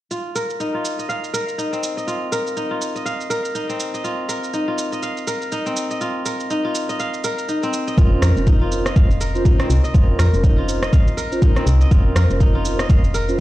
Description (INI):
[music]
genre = afro house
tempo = 122 BPM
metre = 4/4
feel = swing 58% on 16ths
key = unclear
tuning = A4 = 439 Hz
[part]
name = kora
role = arpeggios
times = 0.1-13.4 s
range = C4 to F5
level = -23 LUFS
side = equal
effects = sidechain pumping, low-pass filter, digital delay
[part]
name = electronic shaker and rim click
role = drums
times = 0.1-13.4 s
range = none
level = -29 LUFS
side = right 2 dB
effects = small room reverb
[part]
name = mellow synth brass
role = stabs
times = 8.0-13.4 s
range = Db4 to C5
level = -25 LUFS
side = right 1 dB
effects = chorus, sidechain pumping, digital delay
[part]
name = woody FM bass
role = bass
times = 8.0-13.4 s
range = F1 to F2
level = -18 LUFS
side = equal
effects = sidechain pumping
[part]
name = electronic kick drum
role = drums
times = 8.0-13.0 s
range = none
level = -15 LUFS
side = equal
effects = small room reverb
[sound]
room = little or no reverb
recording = played on a big sound system in a bare room, large studio reverb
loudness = -17 LUFS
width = side -16 dB against mid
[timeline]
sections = 0.1-13.4 A section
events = none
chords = 0.1 F5; 8.0 Bbmadd9/F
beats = | 0.11 0.60 1.09 1.58 | 2.08 2.57 3.06 3.55 | 4.04 4.54 5.03 5.52 | 6.01 6.50 6.99 7.49 | 7.98 8.47 8.96 9.45 | 9.95 10.44 10.93 11.42 | 11.91 12.40 12.90 13.39